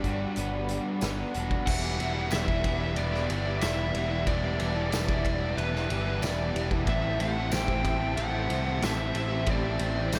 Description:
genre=rock, shoegaze and dream pop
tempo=92 BPM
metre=4/4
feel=straight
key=E minor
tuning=A4 = 440 Hz
part: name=smooth overdriven lead guitar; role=melody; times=0.0-10.2 s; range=G4 to G5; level=-36 LUFS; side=equal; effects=diffuse ambient delay
part: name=phased analog pad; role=sustained chords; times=0.0-10.2 s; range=G4 to B5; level=-40 LUFS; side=equal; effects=phaser, chorus
part: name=biting overdriven guitar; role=riff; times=0.0-10.2 s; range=A2 to F#4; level=-36 LUFS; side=equal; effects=reverse reverb
part: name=overdriven electric guitar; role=riff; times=0.0-10.2 s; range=A2 to F#4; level=-38 LUFS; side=equal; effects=subtle chorus
part: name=modern bright picked electric bass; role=bass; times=0.0-10.2 s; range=E1 to C2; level=-34 LUFS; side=equal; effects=none
part: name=loose indie drum kit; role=drums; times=0.0-10.2 s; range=crash cymbal, hi-hat, kick drum, ride cymbal, snare drum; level=-35 LUFS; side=equal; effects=none
part: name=tambourine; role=percussion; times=1.0-10.2 s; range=none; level=-45 LUFS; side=equal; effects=none
room=moderate lush hall reverb, RT60 2.8 s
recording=dreamy mix soaked in reverb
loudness=-28 LUFS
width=mono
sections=0.0-1.7 A section; 1.7-10.2 B section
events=none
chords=0.0 Em7; 6.9 Am7

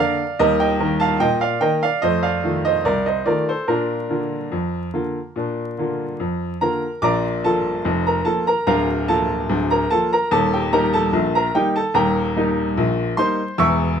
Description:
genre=ragtime piano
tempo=73 BPM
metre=2/4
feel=straight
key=Bb major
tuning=A4 = 441 Hz
part: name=bright upright piano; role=solo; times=0.0-14.0 s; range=D1 to E6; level=-17 LUFS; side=equal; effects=none
room=light reverb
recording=close, detailed microphones, vinyl crackle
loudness=-18 LUFS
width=side -7 dB against mid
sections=0.0-7.0 A section; 7.0-14.0 B section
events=none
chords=0.4 Eb; 2.0 F7; 3.7 Bb; 8.7 Bb/D; 10.3 Eb

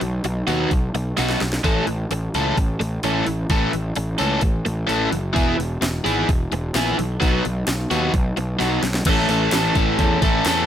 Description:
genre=indie rock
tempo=129 BPM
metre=4/4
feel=straight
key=unclear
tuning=A4 = 442 Hz
part: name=overdriven electric guitar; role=riff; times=0.0-10.7 s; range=E3 to A4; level=-21 LUFS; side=equal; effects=none
part: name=fuzz picked electric bass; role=bass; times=0.0-10.6 s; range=E1 to E2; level=-24 LUFS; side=equal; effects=overdrive
part: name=garage drum kit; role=drums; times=0.0-10.6 s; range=crash cymbal, hi-hat, kick drum, snare drum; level=-23 LUFS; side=equal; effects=none
room=little or no reverb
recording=none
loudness=-18 LUFS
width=side -10 dB against mid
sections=0.0-9.1 A section; 9.1-10.7 B section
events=drum fill 1.2-1.6, 8.6-9.1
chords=0.0 B; 1.6 A; 5.4 E; 7.0 B; 9.1 A

